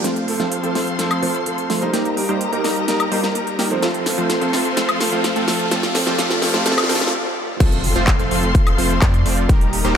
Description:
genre	EDM, festival progressive house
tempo	127 BPM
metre	4/4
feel	straight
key	F mixolydian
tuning	A4 = 440 Hz
part	clear baby grand piano	accompaniment	0.0-7.1 s	F3 to C5	-24 LUFS	right 2 dB	sidechain pumping, tape echo
part	warm symphonic string section	sustained chords	0.0-10.0 s	G4 to C6	-26 LUFS	left 2 dB	sidechain pumping
part	supersaw stab	riff	0.0-10.0 s	F3 to D5	-21 LUFS	right 1 dB	sidechain pumping, low-pass filter, tape echo
part	saturated sub bass	bass	0.0-10.0 s	Eb1 to F2	-23 LUFS	equal	sidechain pumping, high-pass filter
part	big-room dance drum kit	drums	0.0-9.9 s	crash cymbal, handclaps, hi-hat, snare drum, woodblock	-23 LUFS	equal	high-pass filter on snare, high-pass filter on hats, high-pass filter on perc, high-pass filter on cymbals
part	riser, noise sweep and impact	sound effects	0.0-9.5 s	none	-28 LUFS	left 1 dB	none
part	electronic kick drum	drums	7.6-9.6 s	none	-16 LUFS	equal	overdrive
room	light reverb, digital ambience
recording	high-pass filter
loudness	-16 LUFS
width	side -8 dB against mid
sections	0.0-7.6 A section; 7.6-10.0 B section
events	build-up 0.0-7.6; drum fill 0.0-7.1; riser 0.0-7.1; filter sweep on supersaw synth 0.0-7.6; noise sweep 5.7-7.6; break 7.1-7.6; drop 7.6-10.0; impact 7.6-9.5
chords	0.0 F; 1.9 Eb; 3.8 F; 5.7 Bb6; 7.6 F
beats	| 0.04 0.52 0.99 1.46 | 1.94 2.41 2.88 3.35 | 3.82 4.30 4.77 5.24 | 5.71 6.19 6.66 7.13 | 7.60 8.08 8.55 9.02 | 9.49 9.97

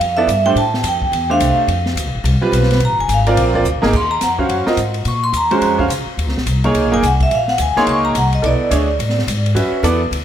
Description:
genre	modal jazz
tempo	214 BPM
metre	4/4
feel	swing 62% on 8ths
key	unclear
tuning	A4 = 441 Hz
part	vibraphone with medium hard mallets	melody	0.0-9.3 s	D5 to Db6	-18 LUFS	equal	tape echo
part	upright bass	bass	0.0-10.2 s	F1 to Bb2	-18 LUFS	left 1 dB	none
part	open jazz drum kit	drums	0.0-10.2 s	crash cymbal, hi-hat, kick drum, ride cymbal, snare drum	-24 LUFS	left 1 dB	none
part	clear baby grand piano	accompaniment	0.2-10.0 s	G3 to F5	-18 LUFS	right 2 dB	analog chorus
room	moderate plate reverb, RT60 1.4 s, small room ambience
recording	dreamy mix soaked in reverb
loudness	-13 LUFS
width	side -10 dB against mid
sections	0.0-3.9 A section; 3.9-10.2 A section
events	vibraphone solo 0.0-10.2; drum fill 3.7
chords	0.0 Dm9; 2.8 Bb7; 3.9 Ebm9; 8.4 Bm9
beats	0.01 0.29 | 0.57 0.85 1.13 1.41 | 1.69 1.97 2.25 2.53 | 2.81 3.09 3.38 3.66 | 3.94 4.22 4.50 4.78 | 5.06 5.34 5.62 5.91 | 6.19 6.47 6.75 7.03 | 7.31 7.59 7.88 8.16 | 8.44 8.72 9.00 9.28 | 9.56 9.84 10.12

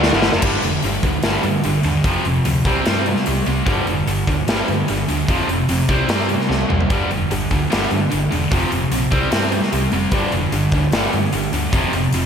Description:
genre	hard rock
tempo	149 BPM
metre	4/4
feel	straight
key	unclear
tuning	A4 = 441 Hz
part	high-gain distorted guitar	riff	0.0-12.3 s	F2 to D4	-19 LUFS	right 1 dB	distortion
part	hollow-body short-scale fingered electric bass	bass	0.0-12.3 s	E1 to G2	-23 LUFS	equal	none
part	big rock drum kit	drums	0.0-12.2 s	crash cymbal, hi-hat, kick drum, snare drum, toms	-21 LUFS	equal	none
room	moderate lush hall reverb, RT60 1.7 s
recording	big arena sound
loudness	-16 LUFS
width	side -7 dB against mid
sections	0.4-12.3 A section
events	drum fill 0.0-0.4, 6.5-6.9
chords	0.4 G5; 2.0 F5; 2.7 C5; 3.7 G5; 5.3 F5; 5.9 C5; 6.9 G5; 8.5 F5; 9.1 C5; 10.1 G5; 11.7 F5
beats	0.03 | 0.43 0.84 1.24 1.65 | 2.05 2.46 2.86 3.26 | 3.67 4.07 4.48 4.88 | 5.28 5.69 6.09 6.50 | 6.90 7.30 7.71 8.11 | 8.51 8.92 9.32 9.72 | 10.12 10.53 10.93 11.33 | 11.73 12.14

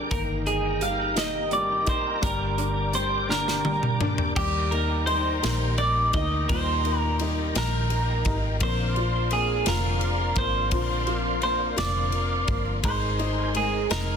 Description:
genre	six-eight pop ballad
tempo	57 BPM (dotted quarters)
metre	6/8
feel	straight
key	Eb major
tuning	A4 = 440 Hz
part	warm baby grand piano	accompaniment	0.0-14.2 s	Bb2 to G4	-33 LUFS	left 1 dB	none
part	bright tonewheel organ	sustained chords	0.0-14.2 s	Eb4 to D6	-33 LUFS	equal	chorus vibrato, slow rotary speaker
part	vintage muted fingered electric bass	bass	0.0-14.2 s	F1 to Eb2	-28 LUFS	equal	none
part	twelve-string electric guitar	melody	0.1-14.2 s	G4 to F5	-27 LUFS	right 2 dB	tape echo
part	picked plugged-in steel-string acoustic guitar	arpeggios	0.1-14.2 s	G2 to Bb4	-35 LUFS	left 8 dB	tape echo
part	modern studio drum kit	drums	0.1-14.1 s	crash cymbal, hi-hat, kick drum, ride cymbal, snare drum, toms	-30 LUFS	equal	none
room	light reverb, studio reverb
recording	dense, heavily limited modern master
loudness	-22 LUFS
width	side -7 dB against mid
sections	0.0-4.4 A section; 4.4-14.2 B section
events	drum fill 3.3-4.4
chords	0.1 Eb/G; 2.2 Gm; 4.4 Eb; 8.6 Bbadd9; 12.8 Abadd9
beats	| 0.12 1.17 | 2.23 3.29 | 4.37 5.43 | 6.50 7.56 | 8.61 9.66 | 10.72 11.78 | 12.84 13.90

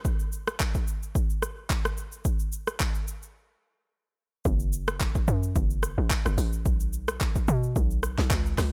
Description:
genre	amapiano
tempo	109 BPM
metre	4/4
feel	swing 55% on 16ths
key	F# minor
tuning	A4 = 442 Hz
part	deep house drum kit	drums	0.0-8.7 s	handclaps, hi-hat, kick drum, rim click, shaker, snare drum	-29 LUFS	equal	none
part	hollow log drum bass	bass	4.5-8.7 s	F#1 to B2	-30 LUFS	equal	none
room	digital ambience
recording	none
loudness	-28 LUFS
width	mono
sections	0.0-4.5 A section; 4.5-8.7 B section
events	break 3.4-4.5; drop 4.5-8.7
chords	none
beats	| 0.05 0.60 1.15 1.70 | 2.25 2.80 3.35 3.90 | 4.45 5.00 5.55 6.11 | 6.66 7.21 7.76 8.31

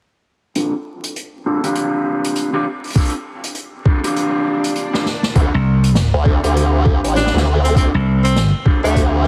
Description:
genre	glitch hop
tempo	100 BPM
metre	4/4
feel	swing 60% on 16ths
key	D minor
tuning	A4 = 441 Hz
part	electric guitar at the edge of break-up	stabs	0.6-9.3 s	C4 to A4	-23 LUFS	equal	sidechain pumping, low-pass filter, tape echo
part	unplugged drum kit	drums	0.6-9.1 s	hi-hat, snare drum	-26 LUFS	equal	none
part	electronic kick drum	drums	3.0-9.1 s	none	-16 LUFS	equal	overdrive
part	swell	sound effects	4.4-5.4 s	none	-33 LUFS	equal	none
part	formant-sweep wobble bass	bass	5.4-9.3 s	A1 to D2	-18 LUFS	equal	chorus
part	slap bass	bass	5.5-8.5 s	C2	-16 LUFS	equal	none
part	clear tenor saxophone	melody	7.2-9.3 s	A3 to D4	-24 LUFS	equal	vintage 12-bit sampler grit, tape echo
room	light reverb, small room ambience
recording	heavily compressed radio sound, multiband compression, vinyl crackle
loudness	-17 LUFS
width	mono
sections	0.6-5.4 A section; 5.4-9.3 B section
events	filter sweep on clean electric guitar 0.6-5.4; kick drops out 4.2-5.4; swell 4.4-5.4; drum fill 4.9-5.4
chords	0.6 Dm7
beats	| 0.56 1.16 1.76 2.36 | 2.96 3.56 4.16 4.76 | 5.36 5.96 6.56 7.16 | 7.76 8.36 8.96

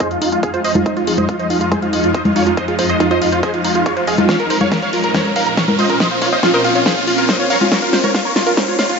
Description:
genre	uplifting trance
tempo	140 BPM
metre	4/4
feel	straight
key	F minor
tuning	A4 = 444 Hz
part	big supersaw lead	melody	0.0-9.0 s	Db4 to F5	-18 LUFS	equal	phaser, sidechain pumping, low-pass filter, dub echo
part	shimmering ambient pad	sustained chords	0.0-9.0 s	F2 to Eb4	-20 LUFS	equal	chorus, built-in reverb, phaser, sidechain pumping
part	analog pluck	arpeggios	0.0-8.8 s	Eb4 to F5	-20 LUFS	right 3 dB	chorus, sidechain pumping, dub echo
part	big-room dance drum kit	drums	0.0-9.0 s	congas, hi-hat, snare drum	-19 LUFS	left 1 dB	none
part	electronic kick drum	drums	0.0-8.7 s	none	-21 LUFS	equal	high-pass filter on kick
part	riser	sound effects	0.1-9.0 s	none	-25 LUFS	left 1 dB	none
room	moderate lush hall reverb, RT60 2.0 s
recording	high-pass filter, nothing above 7.7 kHz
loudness	-13 LUFS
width	side -5 dB against mid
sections	0.0-9.0 A section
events	build-up 0.0-9.0; filter sweep on supersaw synth 0.0-9.0; filter sweep on synth pluck 0.0-9.0; filter sweep 0.0-9.0; riser 0.1-9.0; drum fill 4.3-9.0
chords	0.0 Fm7; 4.3 Bbmadd9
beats	0.00 0.43 | 0.86 1.29 1.72 2.15 | 2.57 3.00 3.43 3.86 | 4.29 4.72 5.15 5.57 | 6.00 6.43 6.86 7.29 | 7.72 8.15 8.57

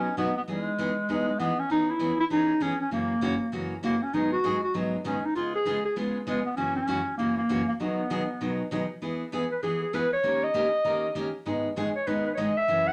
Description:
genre	country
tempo	197 BPM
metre	4/4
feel	swing 63% on 8ths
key	unclear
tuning	A4 = 440 Hz
part	warm clarinet	melody	0.0-12.9 s	G#3 to F#5	-28 LUFS	equal	none
part	picked steel-string acoustic guitar	accompaniment	0.0-12.9 s	F#2 to A#4	-32 LUFS	equal	none
room	wet studio ambience, RT60 0.5 s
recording	none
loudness	-28 LUFS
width	mono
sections	0.0-9.0 A section; 9.0-12.9 B section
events	none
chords	0.5 Emaj7; 1.7 C#m7/E; 2.9 F#7; 4.1 G#m7; 5.4 C#7; 6.6 F#7; 7.8 B6; 9.0 E; 10.2 D#7; 11.5 G#m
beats	0.17 | 0.48 0.78 1.09 1.39 | 1.70 2.00 2.31 2.61 | 2.92 3.22 3.53 3.83 | 4.14 4.44 4.75 5.05 | 5.36 5.66 5.97 6.27 | 6.58 6.88 7.19 7.49 | 7.80 8.10 8.41 8.71 | 9.02 9.32 9.63 9.94 | 10.24 10.55 10.85 11.16 | 11.46 11.77 12.07 12.38 | 12.68

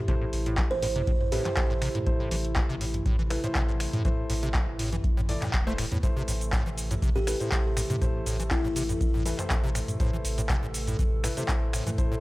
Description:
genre	acid house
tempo	121 BPM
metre	4/4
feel	swing 53% on 16ths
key	A minor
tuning	A4 = 441 Hz
part	warbly tape-like pad	sustained chords	0.0-12.2 s	C3 to A4	-38 LUFS	right 1 dB	chorus, built-in reverb, sidechain pumping
part	warm grand piano	stabs	0.0-12.2 s	A3 to D5	-37 LUFS	left 3 dB	analog delay
part	round analog bass	bass	0.0-12.2 s	E1 to A2	-32 LUFS	equal	sidechain pumping
part	acid bass, square	riff	0.1-12.2 s	A2 to A3	-34 LUFS	equal	tube saturation, analog chorus, analog delay
part	booming analog drum machine	drums	0.1-12.1 s	cabasa, finger snaps, handclaps, hi-hat, toms	-33 LUFS	equal	none
part	electronic kick drum	drums	0.1-12.1 s	none	-28 LUFS	equal	none
part	buzzing kalimba	melody	0.7-1.8, 7.2-8.9 s	E4 to C5	-34 LUFS	right 1 dB	tape echo
room	little or no reverb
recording	dry, gritty hardware recording, transformer saturation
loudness	-25 LUFS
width	side -19 dB against mid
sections	0.0-12.2 A section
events	none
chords	0.0 Am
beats	| 0.08 0.58 1.07 1.57 | 2.06 2.56 3.06 3.55 | 4.05 4.54 5.04 5.54 | 6.03 6.53 7.02 7.52 | 8.02 8.51 9.01 9.50 | 10.00 10.49 10.99 11.49 | 11.98

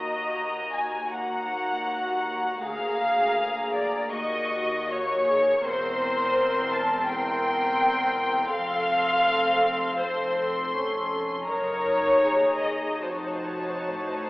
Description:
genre	classical, slow romantic movement for string orchestra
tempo	81 BPM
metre	4/4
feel	uneven beats, rubato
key	unclear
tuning	A4 = 439 Hz
part	dark studio violin section	melody	0.0-14.3 s	A5 to Db6	-32 LUFS	left 1 dB	none
part	rich studio violin section	second line	0.0-14.3 s	C5 to A5	-25 LUFS	left 1 dB	none
part	warm studio viola section	accompaniment	0.0-14.3 s	Bb3 to Bb4	-30 LUFS	equal	none
part	dark studio double bass section	bass	0.0-14.3 s	E1 to Eb2	-45 LUFS	right 1 dB	none
part	warm studio cello section	bass	0.0-14.3 s	D2 to A2	-40 LUFS	right 1 dB	none
room	wet concert hall reverb, RT60 2.4 s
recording	telephone sound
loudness	-23 LUFS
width	side -20 dB against mid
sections	0.0-14.3 A section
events	none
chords	0.0 Ebm; 2.6 Bb7/D; 4.1 Ebm7; 5.6 C7/E; 8.5 F; 11.5 Ebm/Gb; 13.0 F7b9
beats	0.34 1.10 1.86 | 2.64 3.39 4.13 4.88 | 5.65 6.38 7.08 7.80 | 8.51 9.25 10.00 10.75 | 11.50 12.26 13.03 13.87

